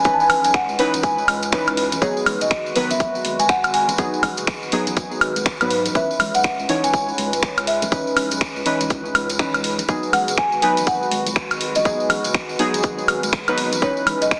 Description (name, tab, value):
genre	deep house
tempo	122 BPM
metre	4/4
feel	swing 61% on 16ths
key	C# minor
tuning	A4 = 439 Hz
part	marimba with soft mallets	melody	0.0-14.4 s	C#5 to A5	-24 LUFS	equal	digital delay
part	hollow soft pad	sustained chords	0.0-14.4 s	G#3 to B4	-31 LUFS	equal	chorus, vintage 12-bit sampler grit, sidechain pumping
part	deep mellow chord stab	stabs	0.0-14.4 s	D#3 to C#5	-26 LUFS	equal	chorus, sidechain pumping, digital delay
part	tambourine	percussion	0.0-14.4 s	none	-33 LUFS	equal	none
part	round analog bass	bass	0.1-14.4 s	F#1 to G#2	-37 LUFS	equal	sidechain pumping
part	electronic kick drum	drums	0.1-14.4 s	none	-26 LUFS	equal	none
part	house drum kit	drums	0.1-14.4 s	finger snaps, hi-hat, woodblock	-24 LUFS	equal	none
part	congas	percussion	0.3-14.2 s	none	-37 LUFS	equal	sidechain pumping on perc
room	moderate lush hall reverb, RT60 1.9 s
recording	heavily compressed radio sound, multiband compression, small speaker sound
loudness	-20 LUFS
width	mono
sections	0.0-14.4 A section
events	none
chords	0.0 C#m9; 2.0 G#m7; 6.0 C#m9; 9.9 G#m7; 13.8 C#m9